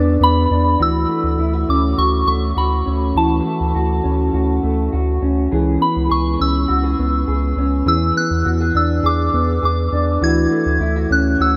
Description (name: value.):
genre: dream pop.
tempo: 102 BPM.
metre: 4/4.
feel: straight.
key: D lydian.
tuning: A4 = 441 Hz.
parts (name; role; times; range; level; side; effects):
soft synth bell; melody; 0.0-11.6 s; A5 to G#6; -23 LUFS; equal; chorus, phaser, tape echo.
mellow electric guitar; arpeggios; 0.0-11.6 s; E3 to G#4; -21 LUFS; equal; lush chorus, tape echo.
round analog bass; bass; 0.0-11.6 s; C#2 to E2; -21 LUFS; equal; none.
room: moderate huge ambient reverb, RT60 6.1 s.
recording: none.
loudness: -17 LUFS.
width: mono.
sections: 0.8-11.6 A section.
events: none.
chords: 0.0 E7; 0.8 Dmaj9; 5.5 C#m7; 7.9 E7; 10.2 Dmaj9.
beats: 0.21 | 0.80 1.39 1.98 2.57 | 3.16 3.75 4.33 4.92 | 5.51 6.10 6.69 7.27 | 7.86 8.45 9.04 9.63 | 10.21 10.80 11.39.